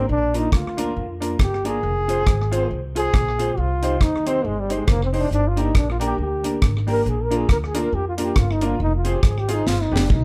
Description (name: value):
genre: ska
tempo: 138 BPM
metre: 4/4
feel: swing 59% on 8ths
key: unclear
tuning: A4 = 441 Hz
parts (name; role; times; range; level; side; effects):
- breathy trombone; melody; 0.0-10.2 s; G3 to Bb4; -26 LUFS; equal; none
- mellow electric guitar; accompaniment; 0.0-10.1 s; Bb3 to C5; -32 LUFS; equal; spring reverb, slapback echo
- clear upright piano; stabs; 0.0-10.1 s; B3 to C5; -31 LUFS; equal; none
- upright bass; bass; 0.0-10.2 s; F1 to F2; -27 LUFS; equal; none
- deep reggae drum kit; drums; 0.3-10.2 s; hi-hat, kick drum, rim click, snare drum, toms; -23 LUFS; equal; slapback echo
room: light reverb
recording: band playing live in one room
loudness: -21 LUFS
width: mono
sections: 0.0-10.2 A section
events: trombone solo 0.0-10.2; drum fill 9.7-10.2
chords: 0.1 Bb; 1.8 Fm; 3.6 Cm; 5.3 Gm; 7.1 Bb; 8.8 Fm; 9.7 G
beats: | 0.09 0.53 0.96 1.40 | 1.83 2.27 2.71 3.14 | 3.58 4.01 4.45 4.88 | 5.32 5.75 6.19 6.62 | 7.06 7.49 7.93 8.36 | 8.80 9.23 9.67 10.10